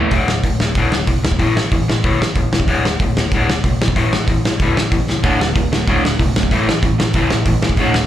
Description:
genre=punk rock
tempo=188 BPM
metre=4/4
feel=straight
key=unclear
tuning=A4 = 440 Hz
part: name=raw garage guitar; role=riff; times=0.0-8.1 s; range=D2 to A3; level=-19 LUFS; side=left 4 dB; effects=overdrive
part: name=raw garage guitar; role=riff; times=0.0-0.1, 5.2-8.1 s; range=D2 to A3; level=-22 LUFS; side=right 12 dB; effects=overdrive
part: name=picked electric bass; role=bass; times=0.1-8.1 s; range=D1 to D2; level=-21 LUFS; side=right 1 dB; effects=none
part: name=loose indie drum kit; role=drums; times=0.1-8.0 s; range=hi-hat, kick drum, snare drum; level=-17 LUFS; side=equal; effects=none
room=little or no reverb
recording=live gig heard through the venue's PA, club ambience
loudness=-14 LUFS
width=side -12 dB against mid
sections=0.1-8.1 A section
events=drum fill 5.1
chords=0.1 D5; 1.4 A5; 2.7 D5; 4.0 A5; 5.2 D5; 6.5 A5

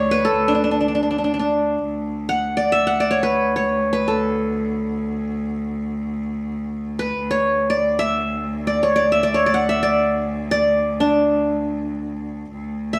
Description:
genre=Arabic maqam ensemble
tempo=free time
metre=none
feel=none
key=D maqam ajam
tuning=A4 = 440 Hz
part: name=qanun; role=melody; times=0.0-13.0 s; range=D4 to F#5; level=-21 LUFS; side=equal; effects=none
part: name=bright cello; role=drone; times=0.0-13.0 s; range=D2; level=-28 LUFS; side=equal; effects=none
room=wet stone room reverb, RT60 0.9 s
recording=band playing live in one room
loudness=-21 LUFS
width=mono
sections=0.0-1.8 A section; 1.8-12.5 A section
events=none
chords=none

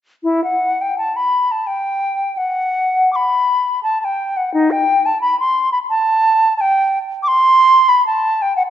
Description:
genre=classical, baroque-style fantasia for unaccompanied flute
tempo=74-92 BPM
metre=3/4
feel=rubato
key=unclear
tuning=A4 = 439 Hz
part: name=mellow wooden flute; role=solo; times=0.2-8.6 s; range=D#4 to D6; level=-13 LUFS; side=equal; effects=none
room=wet recital hall reverb, RT60 1.7 s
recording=nothing above 7.9 kHz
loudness=-13 LUFS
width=side -10 dB against mid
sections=0.2-8.7 A section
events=none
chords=none

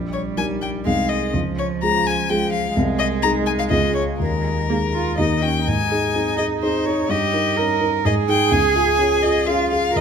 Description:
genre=quick classical-period movement for piano trio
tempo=125 BPM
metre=3/4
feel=straight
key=Ab major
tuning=A4 = 440 Hz
part: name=rich cello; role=second line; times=0.0-10.0 s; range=F3 to Bb4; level=-23 LUFS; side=right 9 dB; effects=none
part: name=dark baby grand piano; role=accompaniment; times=0.0-10.0 s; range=Bb1 to Bb4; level=-21 LUFS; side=left 1 dB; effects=none
part: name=rich violin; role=melody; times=0.1-10.0 s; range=Bb4 to Bb5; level=-22 LUFS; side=left 7 dB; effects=none
room=moderate recital hall reverb, RT60 1.6 s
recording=close, detailed microphones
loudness=-17 LUFS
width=side -7 dB against mid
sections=0.0-5.7 A section; 5.7-10.0 B section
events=none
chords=0.0 Eb/Bb; 0.9 Ab/C; 1.3 Db; 2.8 Ab/C; 3.7 Db; 4.2 Ebsus4; 5.2 Eb; 5.7 Ab; 7.1 Eb7/G; 8.1 Ab5; 8.5 Db

